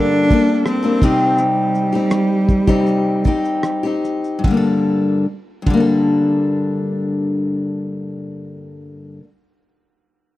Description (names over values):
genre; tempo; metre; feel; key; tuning
acoustic pop; 74-85 BPM; 4/4; straight; G minor; A4 = 439 Hz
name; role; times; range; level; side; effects
clear cello; melody; 0.0-3.7 s; G3 to D4; -19 LUFS; right 2 dB; tape echo
picked steel-string acoustic guitar; accompaniment; 0.0-9.3 s; G2 to A4; -17 LUFS; left 2 dB; none
cloth-damped thuddy drum kit; drums; 0.3-5.9 s; kick drum, ride cymbal, rim click, shaker; -17 LUFS; equal; none
room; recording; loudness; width
studio reverb; dry, close 1970s-style studio recording; -15 LUFS; side -16 dB against mid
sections
0.0-4.4 A section; 4.4-7.7 B section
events
slowing down 0.0-4.4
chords
0.0 Gmadd9; 1.0 Cm; 4.4 Gmadd9